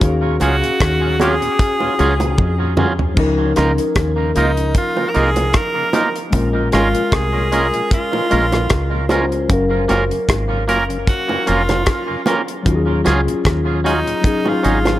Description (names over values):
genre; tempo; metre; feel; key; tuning
lovers rock reggae; 76 BPM; 4/4; swing 56% on 16ths; unclear; A4 = 440 Hz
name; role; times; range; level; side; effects
mellow tine electric piano; accompaniment; 0.0-15.0 s; F3 to F5; -21 LUFS; left 3 dB; phaser, tape echo
deep dub fingered electric bass; bass; 0.0-15.0 s; F1 to F2; -19 LUFS; equal; none
damped 70s drum kit; drums; 0.0-15.0 s; hi-hat, kick drum, rim click, splash cymbal, toms; -18 LUFS; equal; none
mellow tonewheel organ; accompaniment; 0.2-14.9 s; Eb2 to F4; -29 LUFS; left 4 dB; none
edgy tenor saxophone; melody; 0.4-15.0 s; Eb4 to Bb4; -21 LUFS; right 1 dB; tape echo
twangy electric guitar; stabs; 0.4-14.8 s; Gb3 to Bb4; -22 LUFS; right 3 dB; tape echo
bongos; percussion; 0.4-15.0 s; none; -24 LUFS; right 3 dB; none
room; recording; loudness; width
light reverb, small room ambience; none; -14 LUFS; side -14 dB against mid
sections
0.0-15.0 A section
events
drum fill 2.4-3.2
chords
0.0 Ebm11; 3.2 Db69; 6.3 Bbm7; 9.5 Gbmaj7; 12.7 Ebm11; 14.2 Ab7sus4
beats
| 0.01 0.81 1.59 2.38 | 3.17 3.96 4.75 5.55 | 6.34 7.13 7.92 8.71 | 9.50 10.29 11.08 11.87 | 12.66 13.45 14.24